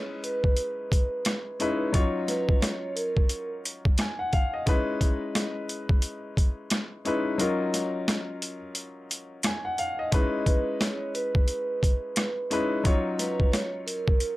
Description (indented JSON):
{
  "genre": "hip hop, boom-bap hip-hop",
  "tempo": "88 BPM",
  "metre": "4/4",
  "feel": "swing 60% on 16ths",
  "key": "unclear",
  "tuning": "A4 = 440 Hz",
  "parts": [
    { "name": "vibraphone with soft mallets", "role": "melody", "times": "0.0-3.5, 10.5-14.4 s", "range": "A#4 to C#5", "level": "-31 LUFS", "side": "right 2 dB", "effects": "slapback echo" },
    { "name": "warm grand piano", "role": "accompaniment", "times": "0.0-14.4 s", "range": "F#3 to G#5", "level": "-30 LUFS", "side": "left 2 dB", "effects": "cassette tape" },
    { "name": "boom bap sampler-style drum kit", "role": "drums", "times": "0.2-14.4 s", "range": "hi-hat, kick drum, rim click, snare drum", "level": "-25 LUFS", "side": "equal", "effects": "overdrive" }
  ],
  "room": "light reverb",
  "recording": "none",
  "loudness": "-25 LUFS",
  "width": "side -18 dB against mid",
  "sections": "0.0-14.4 A section",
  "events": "break 7.4-10.1",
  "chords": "0.0 C#m9; 1.9 D#m9; 4.7 C#m9; 7.4 D#m9; 10.1 C#m9; 12.9 D#m9",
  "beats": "0.58 1.26 | 1.94 2.62 3.31 3.99 | 4.67 5.35 6.03 6.71 | 7.40 8.08 8.76 9.44 | 10.12 10.81 11.49 12.17 | 12.85 13.53 14.21"
}